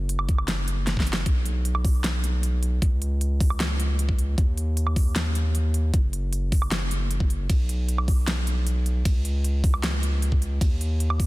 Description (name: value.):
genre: future bass.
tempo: 154 BPM.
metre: 4/4.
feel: half-time.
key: B major.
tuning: A4 = 441 Hz.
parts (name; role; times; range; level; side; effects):
saturated sub bass; bass; 0.0-11.3 s; F#1 to D#2; -24 LUFS; equal; sidechain pumping.
pop drum kit; drums; 0.1-11.3 s; hi-hat, ride cymbal, snare drum, woodblock; -30 LUFS; right 1 dB; none.
electronic kick drum; drums; 0.3-11.3 s; none; -22 LUFS; equal; none.
room: little or no reverb.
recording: dense, heavily limited modern master.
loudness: -22 LUFS.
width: side -19 dB against mid.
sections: 0.0-11.3 A section.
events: drum fill 0.9-1.3.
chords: none.